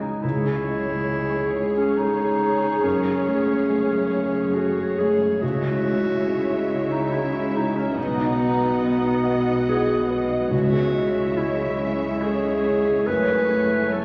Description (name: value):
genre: cinematic, emotional film score for orchestra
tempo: 70 BPM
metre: 3/4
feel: rubato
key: C# minor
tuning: A4 = 440 Hz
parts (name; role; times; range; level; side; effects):
- warm clarinet; second line; 0.0-14.0 s; C#4 to B4; -27 LUFS; equal; none
- felt-muted upright piano; accompaniment; 0.0-14.0 s; B1 to D#5; -30 LUFS; equal; none
- muted studio violin section; second line; 0.2-14.0 s; C#5 to D#5; -34 LUFS; equal; none
- muted studio viola section; accompaniment; 0.2-14.0 s; G#3 to G#4; -34 LUFS; equal; none
- dark French horn section; sustained chords; 0.2-14.0 s; G#3 to G#4; -28 LUFS; equal; none
- muted studio cello section; bass; 0.2-14.0 s; C#2 to C#3; -34 LUFS; equal; none
- muted studio double bass section; bass; 0.2-14.0 s; F#1 to C#2; -37 LUFS; equal; none
- muted studio violin section; melody; 0.3-14.0 s; C#5 to G#5; -39 LUFS; equal; none
room: wet concert hall reverb, RT60 2.5 s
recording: none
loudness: -22 LUFS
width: mono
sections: 0.2-14.0 A section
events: none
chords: 0.2 C#m; 2.8 F#madd9; 5.4 C#m; 8.0 B; 10.5 C#m; 13.1 F#madd9